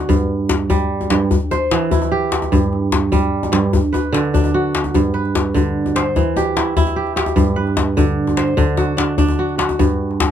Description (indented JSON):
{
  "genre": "west african traditional, West African string and xylophone music",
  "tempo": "99 BPM (dotted quarters)",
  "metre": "12/8",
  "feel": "straight",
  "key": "G major",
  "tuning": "A4 = 440 Hz",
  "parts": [
    { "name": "kora", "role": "arpeggios", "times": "0.0-10.3 s", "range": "G2 to C5", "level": "-17 LUFS", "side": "right 3 dB", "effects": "none" },
    { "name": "djembe", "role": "percussion", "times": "0.1-10.3 s", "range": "none", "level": "-18 LUFS", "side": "left 4 dB", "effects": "none" }
  ],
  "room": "light reverb",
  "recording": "close, detailed microphones",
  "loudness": "-15 LUFS",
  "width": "side -9 dB against mid",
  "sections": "0.0-4.9 A section; 4.9-10.3 B section",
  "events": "none",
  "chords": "0.1 N.C.; 1.3 Em; 2.5 N.C.; 3.7 D; 4.9 G; 6.2 Em; 7.4 G; 8.6 D; 9.8 G5",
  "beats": "| 0.10 0.70 1.31 1.91 | 2.52 3.12 3.73 4.34 | 4.94 5.55 6.16 6.76 | 7.37 7.98 8.59 9.20 | 9.80"
}